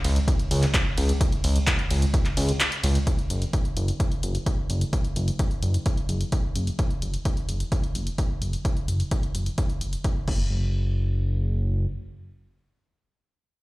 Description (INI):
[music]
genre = EDM, festival progressive house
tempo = 129 BPM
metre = 4/4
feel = straight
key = unclear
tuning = A4 = 440 Hz
[part]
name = fat analog bass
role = bass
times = 0.0-11.9 s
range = F#1 to C#2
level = -23 LUFS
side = equal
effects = sidechain pumping
[part]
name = big-room dance drum kit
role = drums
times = 0.0-10.4 s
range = crash cymbal, handclaps, hi-hat, ride cymbal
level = -30 LUFS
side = equal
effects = none
[part]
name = electronic kick drum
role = drums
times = 0.3-10.4 s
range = none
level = -25 LUFS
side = equal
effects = none
[sound]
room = digital ambience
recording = played on a big sound system in a bare room, large studio reverb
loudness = -22 LUFS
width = side -20 dB against mid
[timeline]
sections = 0.0-3.1 A section; 3.1-10.5 B section; 10.5-13.6 C section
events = drop 0.0-3.1; kick drops out 2.6-3.1; filter sweep on analog synth bass 3.1-10.5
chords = none